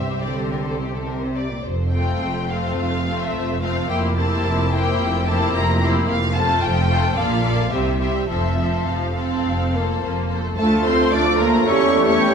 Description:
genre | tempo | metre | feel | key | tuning
classical, dramatic, fast romantic movement for symphony orchestra | 107 BPM | 4/4 | uneven beats, rubato | F major | A4 = 440 Hz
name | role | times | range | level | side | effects
warm symphonic violin section | melody | 0.0-12.3 s | G4 to D6 | -26 LUFS | left 3 dB | none
warm symphonic violin section | second line | 0.0-12.3 s | F4 to D5 | -27 LUFS | left 5 dB | none
rich symphonic viola section | accompaniment | 0.0-12.3 s | F3 to G4 | -25 LUFS | equal | none
rich symphonic double bass section | bass | 0.0-12.3 s | F1 to E2 | -24 LUFS | right 2 dB | none
rich symphonic cello section | bass | 0.2-12.3 s | F2 to D4 | -25 LUFS | right 1 dB | none
bright flute section | second line | 10.6-12.3 s | A4 to D5 | -26 LUFS | right 1 dB | none
warm clarinet | second line | 10.6-12.3 s | F4 to G4 | -26 LUFS | right 1 dB | none
mellow bassoon | accompaniment | 10.6-12.3 s | A3 | -25 LUFS | right 3 dB | none
clear trombone section | sustained chords | 10.6-12.3 s | D3 to G3 | -26 LUFS | right 4 dB | none
mellow French horn section | sustained chords | 10.6-12.3 s | A3 to A4 | -25 LUFS | right 2 dB | none
warm oboe | second line | 11.7-12.3 s | E5 to G5 | -26 LUFS | right 1 dB | none
room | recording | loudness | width
wet scoring stage reverb, RT60 1.9 s | minimal, uncompressed stereo recording | -18 LUFS | side -6 dB against mid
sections
0.0-10.6 A section; 10.6-12.3 B section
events
none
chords
0.0 C5; 1.7 F; 3.9 C7/F; 6.1 F; 7.2 Bbmaj7; 7.7 C; 8.3 F; 10.6 Dm; 11.7 A7/E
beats
0.51 1.08 | 1.66 2.23 2.79 3.34 | 3.90 4.45 5.00 5.55 | 6.09 6.64 7.18 7.73 | 8.30 8.88 9.45 10.02 | 10.59 11.14 11.67 12.20

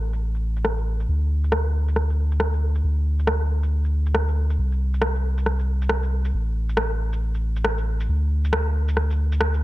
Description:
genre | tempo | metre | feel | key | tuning
future garage | 137 BPM | 4/4 | swing 62% on 16ths | unclear | A4 = 440 Hz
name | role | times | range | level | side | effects
soft dub sub bass | bass | 0.0-9.6 s | A1 to D2 | -21 LUFS | equal | tube saturation
electronic shaker and rim click | drums | 0.1-9.6 s | none | -26 LUFS | equal | low-pass filter on perc, small room ambience, low-pass filter on snare
room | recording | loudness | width
digital ambience | none | -20 LUFS | side -17 dB against mid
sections
0.0-9.6 A section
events
none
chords
none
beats
0.21 0.65 | 1.08 1.52 1.96 2.40 | 2.83 3.27 3.71 4.15 | 4.59 5.03 5.46 5.90 | 6.34 6.78 7.21 7.65 | 8.09 8.53 8.97 9.40

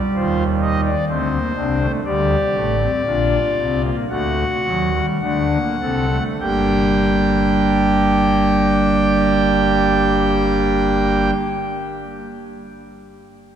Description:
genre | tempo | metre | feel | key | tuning
classical, baroque-style 4-part fugue for pipe organ | 49-66 BPM | 4/4 | straight | G minor | A4 = 440 Hz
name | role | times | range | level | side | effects
pipe organ, foundations | solo | 0.0-11.3 s | G1 to G5 | -16 LUFS | equal | none
room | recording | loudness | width
wet cathedral reverb, RT60 5.1 s | none | -15 LUFS | side -9 dB against mid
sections
0.0-6.4 A section; 6.4-11.3 B section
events
slowing down 0.0-6.4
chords
0.1 Cm/Eb; 2.0 D7sus4; 4.1 D7; 6.4 Gm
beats
0.14 1.07 | 2.04 3.05 4.10 5.22 | 6.40 7.63 8.86 10.08

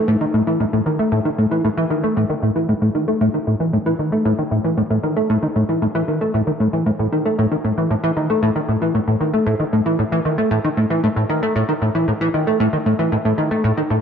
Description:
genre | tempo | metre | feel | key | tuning
ambient | 115 BPM | 4/4 | straight | unclear | A4 = 441 Hz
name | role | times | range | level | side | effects
plucky analog bass | solo | 0.0-14.0 s | A2 to A3 | -16 LUFS | equal | wide subtle chorus, cassette tape, tape echo
room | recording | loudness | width
wet spring reverb, RT60 2.2 s | echo-heavy mix | -16 LUFS | side -7 dB against mid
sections
0.0-2.2 A section; 2.2-14.0 B section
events
none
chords
none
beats
| 0.08 0.60 1.12 1.64 | 2.17 2.69 3.21 3.73 | 4.25 4.77 5.30 5.82 | 6.34 6.86 7.38 7.91 | 8.43 8.95 9.47 9.99 | 10.51 11.04 11.56 12.08 | 12.60 13.12 13.64

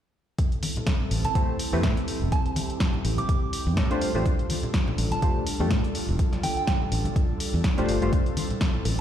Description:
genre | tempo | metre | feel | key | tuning
deep house | 124 BPM | 4/4 | swing 56% on 16ths | A minor | A4 = 440 Hz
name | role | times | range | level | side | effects
airy breathy pad | sustained chords | 0.4-9.0 s | G3 to A4 | -33 LUFS | right 1 dB | chorus, sidechain pumping
deep house drum kit | drums | 0.4-9.0 s | hi-hat, snare drum | -32 LUFS | equal | overdrive
electronic kick drum | drums | 0.4-8.7 s | none | -25 LUFS | equal | overdrive
congas and bongos | percussion | 0.6-9.0 s | none | -33 LUFS | left 2 dB | none
fingered electric bass | bass | 1.1-9.0 s | E1 to A2 | -26 LUFS | equal | sidechain pumping
soft synth bell | melody | 1.2-6.6 s | G5 to D6 | -33 LUFS | right 4 dB | chorus, dub echo
warm analog keys | stabs | 1.3-8.1 s | A3 to C5 | -29 LUFS | left 2 dB | chorus, sidechain pumping, low-pass filter, ping-pong delay
room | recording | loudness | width
light reverb, digital ambience | played on a big sound system in a bare room, large studio reverb | -23 LUFS | side -10 dB against mid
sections
0.4-9.0 A section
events
none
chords
0.4 Am7; 4.0 F69/A; 8.1 Am7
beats
| 0.39 0.87 1.35 1.84 | 2.32 2.81 3.29 3.77 | 4.26 4.74 5.22 5.71 | 6.19 6.68 7.16 7.64 | 8.13 8.61

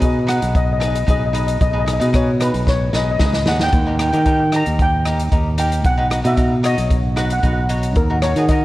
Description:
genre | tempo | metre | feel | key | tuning
calypso | 113 BPM | 4/4 | straight | G# minor | A4 = 440 Hz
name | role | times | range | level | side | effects
steel pan | melody | 0.0-8.6 s | A#4 to A#5 | -22 LUFS | left 1 dB | none
cavaquinho | accompaniment | 0.0-8.6 s | D#4 to C#5 | -25 LUFS | equal | none
modern bright fingered electric bass | bass | 0.0-8.6 s | B1 to D#3 | -18 LUFS | equal | none
swinging big-band drum kit | drums | 0.0-8.6 s | hi-hat, kick drum, rim click, snare drum | -20 LUFS | equal | none
room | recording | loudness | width
light reverb | worn, warbling old tape, cassette tape, warbly pitch drift | -15 LUFS | side -16 dB against mid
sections
0.0-8.6 A section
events
drum fill 2.7-3.7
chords
0.0 G#m/B; 3.7 D#; 5.8 B; 8.0 D#m7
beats
0.02 0.55 1.08 | 1.61 2.14 2.67 3.20 | 3.73 4.26 4.79 5.32 | 5.85 6.38 6.90 7.43 | 7.96 8.49

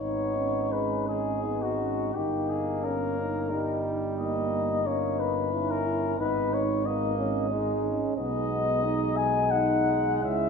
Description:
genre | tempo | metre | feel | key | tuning
classical, hymn-like piece for brass band | 89 BPM | 3/4 | uneven beats, rubato | G# minor | A4 = 440 Hz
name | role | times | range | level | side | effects
dark cornet | melody | 0.0-10.5 s | F#4 to G#5 | -30 LUFS | left 4 dB | none
warm French horn section | second line | 0.0-10.5 s | A#3 to E4 | -32 LUFS | right 7 dB | none
bright trombone | accompaniment | 0.0-10.5 s | G3 to C#4 | -34 LUFS | right 4 dB | none
clear euphonium | accompaniment | 0.0-10.5 s | C#4 to E4 | -32 LUFS | left 5 dB | none
dark tuba | bass | 0.0-10.5 s | G1 to C#2 | -33 LUFS | right 1 dB | none
room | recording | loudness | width
moderate scoring stage reverb, RT60 1.8 s | minimal, uncompressed stereo recording | -25 LUFS | side -5 dB against mid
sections
0.0-10.5 A section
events
none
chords
0.0 G#m; 2.1 D#/G; 4.2 D#7/G; 6.2 G#m; 8.2 G#m/B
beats
0.72 1.44 | 2.14 2.84 3.52 | 4.17 4.86 5.53 | 6.19 6.85 7.51 | 8.17 8.83 9.51 | 10.23

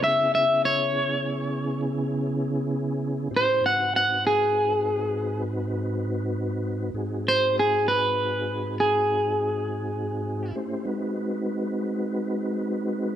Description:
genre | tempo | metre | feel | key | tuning
blues | 66 BPM (dotted quarters) | 12/8 | straight | unclear | A4 = 440 Hz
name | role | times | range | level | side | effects
electric guitar at the edge of break-up | melody | 0.0-10.5 s | G#4 to F#5 | -22 LUFS | equal | none
mellow tonewheel organ | sustained chords | 0.0-13.2 s | G#2 to B#4 | -28 LUFS | equal | slow rotary speaker, chorus vibrato
room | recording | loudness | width
moderate plate reverb, RT60 3.5 s | none | -23 LUFS | side -10 dB against mid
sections
0.0-13.2 A section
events
none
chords
0.0 C#m7; 3.3 G#7#9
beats
0.60 1.51 2.41 | 3.32 4.22 5.13 6.03 | 6.94 7.84 8.75 9.65 | 10.56 11.46 12.37

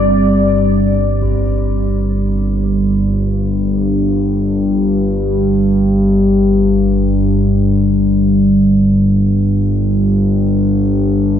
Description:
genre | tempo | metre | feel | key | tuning
dark ambient drone | free time | none | none | unclear | A4 = 440 Hz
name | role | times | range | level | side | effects
deep dark ambient pad | sustained chords | 0.0-1.2 s | G3 to D5 | -18 LUFS | left 1 dB | chorus, built-in reverb
analog drone | drone | 0.0-11.4 s | G1 to G2 | -12 LUFS | equal | chorus
impact | percussion | 1.2-1.4 s | none | barely audible | none | none
bronze singing bowl | texture | 1.2-11.4 s | G3 to G4 | -35 LUFS | left 1 dB | none
room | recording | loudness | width
wet cathedral reverb, RT60 5.3 s | dark, warm production | -11 LUFS | side -9 dB against mid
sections
0.0-1.2 A section; 1.2-11.4 B section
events
none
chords
0.0 C5/G; 1.2 N.C.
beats
free time

